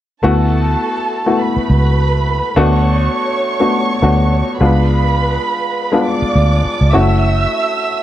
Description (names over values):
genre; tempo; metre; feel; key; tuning
soul; 103 BPM; 4/4; swing 54% on 16ths; D major; A4 = 440 Hz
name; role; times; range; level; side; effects
dark studio violin section; second line; 0.2-8.0 s; A4 to E6; -19 LUFS; right 3 dB; none
dark baby grand piano; accompaniment; 0.2-8.0 s; G#3 to F#4; -16 LUFS; left 2 dB; none
vintage muted fingered electric bass; bass; 0.2-7.5 s; F#1 to D2; -13 LUFS; equal; none
room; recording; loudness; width
light reverb, small room ambience; none; -12 LUFS; side -13 dB against mid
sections
0.2-8.0 A section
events
none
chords
0.2 D69; 2.6 Bm9/D; 4.6 C#7b9; 6.9 F#m7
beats
| 0.24 0.82 1.40 1.99 | 2.57 3.15 3.73 4.32 | 4.90 5.48 6.07 6.65 | 7.23 7.81